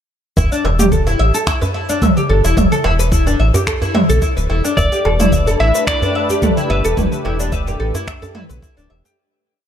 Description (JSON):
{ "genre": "organic downtempo", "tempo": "109 BPM", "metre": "4/4", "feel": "swing 54% on 16ths", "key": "E minor", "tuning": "A4 = 438 Hz", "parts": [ { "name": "oud", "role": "arpeggios", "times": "0.4-9.2 s", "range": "D4 to E5", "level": "-19 LUFS", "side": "left 1 dB", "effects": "ping-pong delay" }, { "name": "round analog bass", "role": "bass", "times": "0.4-9.0 s", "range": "D1 to B1", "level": "-16 LUFS", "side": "equal", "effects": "none" }, { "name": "deep house drum kit", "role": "drums", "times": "0.4-9.2 s", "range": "finger snaps, shaker, toms", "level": "-19 LUFS", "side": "equal", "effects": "none" }, { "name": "electronic kick drum", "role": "drums", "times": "0.4-8.7 s", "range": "none", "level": "-18 LUFS", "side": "equal", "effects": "none" }, { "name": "djembe", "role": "percussion", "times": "0.4-9.2 s", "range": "none", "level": "-24 LUFS", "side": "right 2 dB", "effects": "none" }, { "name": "clean lap steel guitar", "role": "melody", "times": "4.8-7.2 s", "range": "B4 to E5", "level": "-20 LUFS", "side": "left 1 dB", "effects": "ping-pong delay" }, { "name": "warm analog pad", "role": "sustained chords", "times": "4.8-9.2 s", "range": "A3 to B4", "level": "-25 LUFS", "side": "left 1 dB", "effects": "chorus, sidechain pumping" } ], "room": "light reverb", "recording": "none", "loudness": "-13 LUFS", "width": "side -9 dB against mid", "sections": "0.4-9.2 groove", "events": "fade-out 6.2-9.2", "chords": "0.4 Em7" }